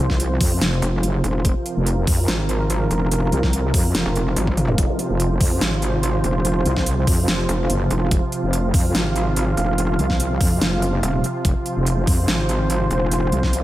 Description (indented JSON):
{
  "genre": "heavy wobble dubstep",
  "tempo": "144 BPM",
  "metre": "4/4",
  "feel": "half-time",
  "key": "F minor",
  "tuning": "A4 = 440 Hz",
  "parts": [
    { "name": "supersaw pad", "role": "sustained chords", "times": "0.0-13.6 s", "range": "C3 to F5", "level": "-23 LUFS", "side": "right 1 dB", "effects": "sidechain pumping, low-pass filter" },
    { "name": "wobble bass", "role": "bass", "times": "0.0-13.6 s", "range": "F1 to F2", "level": "-20 LUFS", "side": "equal", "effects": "chorus, overdrive" },
    { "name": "big-room dance drum kit", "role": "drums", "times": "0.1-13.6 s", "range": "hi-hat, snare drum, toms", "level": "-24 LUFS", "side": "equal", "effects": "small room ambience" },
    { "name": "electronic kick drum", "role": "drums", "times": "0.1-13.5 s", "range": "none", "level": "-20 LUFS", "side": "equal", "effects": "overdrive, small room ambience" },
    { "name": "metallic wobble bass", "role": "bass", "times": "0.8-13.3 s", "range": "Eb1 to Ab1", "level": "-21 LUFS", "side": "equal", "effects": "chorus, overdrive" },
    { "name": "zap", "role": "sound effects", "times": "4.7-4.8 s", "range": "none", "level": "-29 LUFS", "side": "equal", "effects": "none" }
  ],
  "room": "digital ambience",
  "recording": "none",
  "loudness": "-17 LUFS",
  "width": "side -15 dB against mid",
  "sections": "0.0-13.6 A section",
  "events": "drum fill 4.4-4.8",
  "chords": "0.0 F5",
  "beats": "0.20 0.61 1.03 | 1.45 1.86 2.28 2.70 | 3.11 3.53 3.95 4.36 | 4.78 5.20 5.61 6.03 | 6.45 6.86 7.28 7.70 | 8.11 8.53 8.95 9.36 | 9.78 10.20 10.61 11.03 | 11.45 11.86 12.28 12.70 | 13.11 13.53"
}